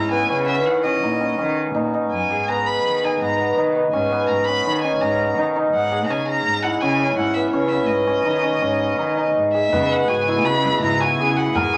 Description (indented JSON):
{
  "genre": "contemporary instrumental, chamber music in an uneven meter",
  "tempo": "165 BPM",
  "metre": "5/4",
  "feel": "straight",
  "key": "G# minor",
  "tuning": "A4 = 437 Hz",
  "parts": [
    { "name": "rich violin", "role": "melody", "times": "0.0-11.8 s", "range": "C#5 to B5", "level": "-25 LUFS", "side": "equal", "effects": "none" },
    { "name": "hammered dulcimer", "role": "arpeggios", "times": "0.0-11.8 s", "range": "B3 to A#4", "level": "-22 LUFS", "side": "equal", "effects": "none" },
    { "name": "dark cello", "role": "bass", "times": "0.0-11.8 s", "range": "F#2 to D#3", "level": "-30 LUFS", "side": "equal", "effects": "none" },
    { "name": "soft additive organ-like pad", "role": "sustained chords", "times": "10.1-11.8 s", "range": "B2 to F#4", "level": "-32 LUFS", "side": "equal", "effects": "ensemble chorus, built-in reverb" },
    { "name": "frame drum", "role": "percussion", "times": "9.7-11.7 s", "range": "none", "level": "-31 LUFS", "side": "equal", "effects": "none" }
  ],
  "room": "moderate studio reverb, RT60 0.8 s",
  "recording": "none",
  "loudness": "-20 LUFS",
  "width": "mono",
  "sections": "0.0-9.7 A section; 9.7-11.8 B section",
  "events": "none",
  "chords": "0.0 C#m7; 0.7 D#7(no3); 2.5 G#madd9; 6.1 C#m7"
}